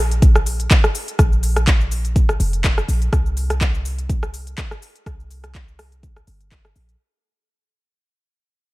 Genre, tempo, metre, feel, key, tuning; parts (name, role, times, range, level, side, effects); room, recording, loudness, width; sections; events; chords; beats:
afro house; 124 BPM; 4/4; swing 55% on 16ths; A4 = 439 Hz
warm 808-style bass; bass; 0.0-7.0 s; F1 to C2; -21 LUFS; equal; sidechain pumping
afro-pop drum kit; drums; 0.1-7.0 s; handclaps, hi-hat, rim click, shaker; -22 LUFS; equal
electronic kick drum; drums; 0.2-6.6 s; -16 LUFS; equal
digital ambience; -16 LUFS; side -20 dB against mid
0.0-7.0 A section
drop 0.0-7.0; fade-out 0.0-7.0
0.22 0.71 | 1.19 1.68 2.16 2.64 | 3.13 3.61 4.09 4.58 | 5.06 5.55 6.03 6.51